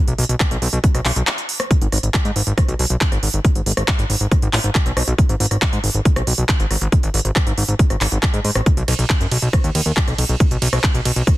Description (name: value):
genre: psychedelic trance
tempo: 138 BPM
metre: 4/4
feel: straight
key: G# phrygian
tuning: A4 = 440 Hz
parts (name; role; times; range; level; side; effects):
- fat analog bass; bass; 0.1-11.2 s; F#1 to G#2; -19 LUFS; equal; none
- techno drum kit; drums; 0.1-11.4 s; handclaps, hi-hat, ride cymbal, rim click; -22 LUFS; right 1 dB; soft clipping on snare
- electronic kick drum; drums; 0.4-11.4 s; none; -16 LUFS; equal; none
room: little or no reverb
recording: dense, heavily limited modern master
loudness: -15 LUFS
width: side -17 dB against mid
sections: 0.0-11.4 A section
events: break 1.3-1.7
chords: none